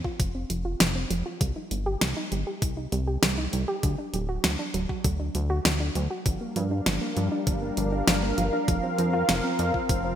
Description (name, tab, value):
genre	synthwave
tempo	99 BPM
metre	4/4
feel	straight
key	G minor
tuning	A4 = 440 Hz
part	soft round pluck	arpeggios	0.0-10.2 s	F3 to G4	-32 LUFS	right 2 dB	chorus, digital delay
part	electronic kick drum	drums	0.0-10.0 s	none	-28 LUFS	equal	overdrive
part	chorused synth bass	bass	0.2-10.1 s	D1 to G2	-29 LUFS	equal	none
part	pop drum kit	drums	0.2-10.0 s	hi-hat, snare drum	-27 LUFS	equal	none
part	warm analog pad	sustained chords	6.3-10.2 s	F3 to F5	-27 LUFS	equal	chorus, vintage 12-bit sampler grit, sidechain pumping
room	moderate lush hall reverb, RT60 1.9 s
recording	bright 1980s-style digital production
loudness	-24 LUFS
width	side -10 dB against mid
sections	0.0-10.2 A section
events	none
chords	0.0 F5; 1.4 Cm; 3.8 D; 6.3 Gm7; 8.7 Fsus4